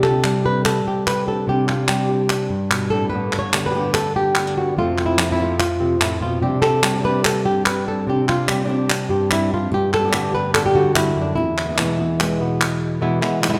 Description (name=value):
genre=flamenco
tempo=146 BPM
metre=4/4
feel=straight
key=unclear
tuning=A4 = 439 Hz
part: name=flamenco guitar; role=melody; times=0.0-13.6 s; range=E2 to C#5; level=-21 LUFS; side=equal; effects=none
part: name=flamenco guitar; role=stabs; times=0.0-12.6 s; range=E2 to G4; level=-28 LUFS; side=equal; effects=none
part: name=palmas hand claps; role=percussion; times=0.0-13.6 s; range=none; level=-25 LUFS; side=equal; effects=none
room=wet recital hall reverb, RT60 1.4 s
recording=recorded in a church or concert hall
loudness=-19 LUFS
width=mono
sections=0.0-13.0 A section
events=none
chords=0.0 Csus2; 3.1 Gadd9; 4.8 F; 6.4 Csus2; 9.7 Gadd9; 11.4 E